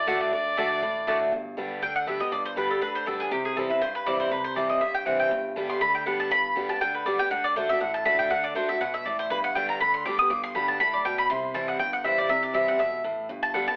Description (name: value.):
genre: bluegrass.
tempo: 241 BPM.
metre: 4/4.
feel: swing 54% on 8ths.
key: unclear.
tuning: A4 = 440 Hz.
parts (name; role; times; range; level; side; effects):
clear fiddle; melody; 0.0-1.0 s; D5 to F#5; -30 LUFS; equal; none.
picked steel-string acoustic guitar; accompaniment; 0.0-13.8 s; G2 to G4; -30 LUFS; equal; none.
upright bass; bass; 0.0-13.7 s; G1 to G2; -50 LUFS; equal; none.
mandolin; stabs; 0.1-13.8 s; A3 to Eb6; -28 LUFS; equal; none.
room: wet studio reverb, RT60 0.7 s.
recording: heard from further back in the room, telephone sound.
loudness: -26 LUFS.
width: mono.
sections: 0.0-1.3 A section; 1.3-13.8 B section.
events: mandolin solo 1.3-13.8.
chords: 0.0 D; 1.3 G; 3.3 C; 5.3 G; 7.3 D; 9.3 G; 11.3 C.